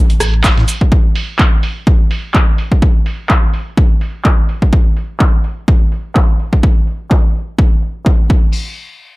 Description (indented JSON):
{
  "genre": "acid house",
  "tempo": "126 BPM",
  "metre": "4/4",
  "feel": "swing 56% on 16ths",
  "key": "unclear",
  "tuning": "A4 = 440 Hz",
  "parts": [
    { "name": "warm sub bass", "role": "bass", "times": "0.0-0.6 s", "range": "A1 to A2", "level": "-14 LUFS", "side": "equal", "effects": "sidechain pumping" },
    { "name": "dusty soul sampler-style drum kit", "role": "drums", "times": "0.1-0.8 s", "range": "hi-hat, shaker, snare drum", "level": "-23 LUFS", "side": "right 1 dB", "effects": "sidechain pumping on perc, high-pass filter on perc, sidechain pumping on hats, high-pass filter on hats, high-pass filter on snare" },
    { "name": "punchy analog drum machine", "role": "drums", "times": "0.1-8.4 s", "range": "crash cymbal, handclaps, hi-hat, rim click", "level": "-19 LUFS", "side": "equal", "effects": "overdrive, low-pass filter on hats, low-pass filter on snare, low-pass filter on cymbals, low-pass filter on room" },
    { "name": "electronic kick drum", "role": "drums", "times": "0.4-8.4 s", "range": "none", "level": "-11 LUFS", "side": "equal", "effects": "overdrive" }
  ],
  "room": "little or no reverb",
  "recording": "none",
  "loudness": "-11 LUFS",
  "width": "side -21 dB against mid",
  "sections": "0.0-8.5 A section",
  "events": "filter sweep on drum 0.0-8.5",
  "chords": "none"
}